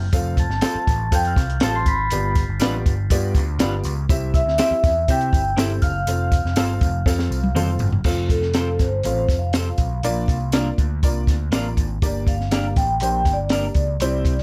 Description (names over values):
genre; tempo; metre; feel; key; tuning
uptempo 1960s-style soul; 121 BPM; 4/4; straight; F major; A4 = 440 Hz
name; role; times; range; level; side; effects
overdriven picked electric bass; bass; 0.0-14.4 s; F1 to C3; -26 LUFS; equal; none
warm upright piano; accompaniment; 0.1-14.3 s; G3 to F5; -31 LUFS; equal; none
compact cocktail drum kit; drums; 0.1-14.4 s; crash cymbal, hi-hat, kick drum, snare drum, toms; -23 LUFS; equal; none
tambourine; percussion; 0.1-14.4 s; none; -40 LUFS; equal; none
vibraphone with soft mallets; melody; 0.4-14.4 s; F4 to C6; -27 LUFS; equal; none
glockenspiel with rubber mallets; second line; 0.4-7.5 s; E6 to C7; -35 LUFS; equal; none
electric guitar through a small old amp; stabs; 0.6-13.7 s; G3 to C5; -31 LUFS; equal; none
room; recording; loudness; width
light reverb; none; -20 LUFS; mono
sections
0.0-8.1 A section; 8.1-14.4 B section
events
drum fill 7.1-8.1; vibraphone solo 8.1-14.4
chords
0.1 F; 2.1 G7; 4.1 C; 6.1 F; 10.0 Bb; 12.0 Gm